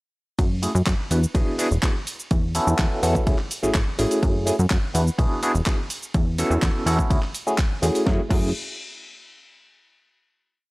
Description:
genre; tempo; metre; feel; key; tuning
filtered disco house; 125 BPM; 4/4; straight; F# minor; A4 = 440 Hz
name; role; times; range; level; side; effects
plucky analog bass; bass; 0.4-8.5 s; E1 to F#2; -22 LUFS; equal; sidechain pumping
electronic kick drum; drums; 0.4-8.4 s; none; -22 LUFS; equal; none
house drum kit; drums; 0.4-8.4 s; crash cymbal, handclaps, hi-hat, ride cymbal, shaker, snare drum; -30 LUFS; equal; sidechain pumping on cymbals, sidechain pumping on perc, sidechain pumping on hats
overdriven tine electric piano; accompaniment; 0.6-8.5 s; A3 to B4; -24 LUFS; equal; fast tremolo, phaser, vintage 12-bit sampler grit, sidechain pumping
room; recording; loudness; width
digital ambience; dry, gritty hardware recording; -20 LUFS; side -23 dB against mid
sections
0.4-8.1 drop; 8.1-10.0 final chord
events
drop 0.4-8.1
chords
0.4 F#m7; 1.1 E7; 2.1 A6/E; 3.3 Dmaj9#11 (rootless); 4.2 F#m9; 4.9 E7; 5.9 A6/E; 7.1 Dmaj9#11 (rootless); 7.6 E; 8.1 F#m9

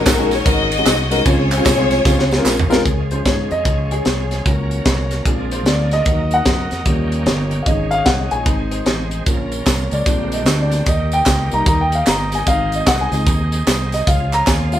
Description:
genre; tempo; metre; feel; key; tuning
uptempo gospel; 150 BPM; 4/4; swing 64% on 8ths; Db major; A4 = 440 Hz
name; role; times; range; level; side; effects
warm symphonic string section; melody; 0.0-2.7 s; Db4 to Eb5; -19 LUFS; left 2 dB; none
dark concert grand piano; accompaniment; 0.0-14.8 s; Ab2 to Bb5; -20 LUFS; left 1 dB; none
bright tonewheel organ; sustained chords; 0.0-14.8 s; D3 to Bb4; -31 LUFS; right 2 dB; slow rotary speaker, chorus vibrato
fingered electric bass; bass; 0.1-14.8 s; G1 to Ab2; -21 LUFS; equal; none
tight funk drum kit; drums; 0.1-14.8 s; hi-hat, kick drum, ride cymbal, snare drum, toms; -18 LUFS; equal; none
handclaps and tambourine; percussion; 0.1-2.8, 9.3-14.8 s; none; -27 LUFS; right 3 dB; none
muted French horn section; sustained chords; 2.8-14.8 s; Db4 to F5; -28 LUFS; right 2 dB; none
room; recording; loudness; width
moderate studio reverb, RT60 0.8 s; band playing live in one room; -14 LUFS; side -11 dB against mid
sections
0.0-2.9 A section; 2.9-14.8 B section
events
drum fill 2.1-2.9; grand piano solo 2.9-14.8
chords
0.0 Ab7sus4; 1.3 Dbmaj7; 2.9 Db; 4.5 Gb/Db; 5.3 Bb7; 6.1 Ebm; 6.9 Eb7; 7.7 Absus4; 8.5 Ab; 9.3 Bbm; 10.1 Bb13; 10.9 Eb; 12.5 Ab; 14.1 Db

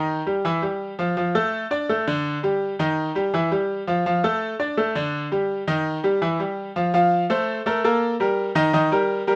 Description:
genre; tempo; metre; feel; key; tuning
latin; 167 BPM; 4/4; straight; F major; A4 = 441 Hz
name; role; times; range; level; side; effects
bright concert grand piano; solo; 0.0-9.4 s; D3 to F5; -23 LUFS; equal; none
room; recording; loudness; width
moderate studio reverb, RT60 0.7 s; none; -23 LUFS; mono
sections
0.0-6.9 A section; 6.9-9.4 B section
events
none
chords
0.5 Em; 1.2 F; 1.9 Dsus4; 2.6 Eb; 3.3 Em; 4.1 F; 4.8 Dsus4; 5.5 Eb; 6.2 Em; 6.9 F; 7.7 Gmadd9; 8.4 Eb

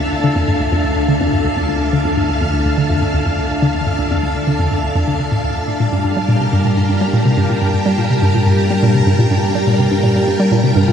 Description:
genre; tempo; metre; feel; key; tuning
ambient, sequencer-driven space music; 124 BPM; 4/4; straight; D minor; A4 = 439 Hz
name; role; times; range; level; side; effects
string machine, full ensemble; sustained chords; 0.0-10.9 s; G3 to F5; -18 LUFS; equal; ensemble chorus, shimmer reverb
hollow square pluck; riff; 0.0-10.9 s; D2 to G3; -16 LUFS; equal; chorus, ping-pong delay
analog drone; bass; 0.0-10.9 s; D2 to G2; -24 LUFS; equal; chorus
wind-like tuned noise texture; texture; 0.0-10.9 s; A5; -26 LUFS; right 1 dB; built-in reverb, shimmer reverb
room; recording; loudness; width
wet huge ambient reverb, RT60 8.7 s; none; -13 LUFS; side -8 dB against mid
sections
0.0-10.9 A section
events
filter sweep on synth arpeggio sound 0.0-10.9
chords
0.0 Dmadd9; 5.8 Gm7

